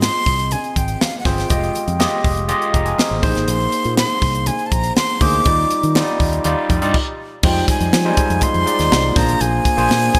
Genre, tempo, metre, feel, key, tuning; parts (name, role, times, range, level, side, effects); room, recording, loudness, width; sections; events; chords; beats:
polished 1980s jazz-funk pop; 121 BPM; 4/4; straight; F dorian; A4 = 440 Hz
breathy jazz flute; melody; 0.0-10.2 s; F5 to D6; -23 LUFS; equal
overdriven tine electric piano; accompaniment; 0.0-10.2 s; G3 to C6; -23 LUFS; equal; lush chorus
fingered electric bass; bass; 0.0-10.1 s; F1 to F3; -24 LUFS; equal
crisp fusion drum kit; drums; 0.0-10.2 s; crash cymbal, hi-hat, kick drum, snare drum; -21 LUFS; equal; gated reverb
congas; percussion; 0.0-10.0 s; -33 LUFS; equal
light reverb, small room ambience; bright 1980s-style digital production; -17 LUFS; mono
0.0-7.4 A section; 7.4-10.2 B section
tine electric piano fill 2.5-3.5; stop 6.9-7.4
0.0 Ab6; 1.5 Fm9; 3.2 Bb9sus4; 5.5 Ebmaj9; 7.4 Fm9; 9.2 Bb9
0.02 0.51 1.01 | 1.50 2.00 2.49 2.98 | 3.48 3.97 4.47 4.96 | 5.46 5.95 6.45 6.94 | 7.43 7.93 8.42 8.91 | 9.41 9.90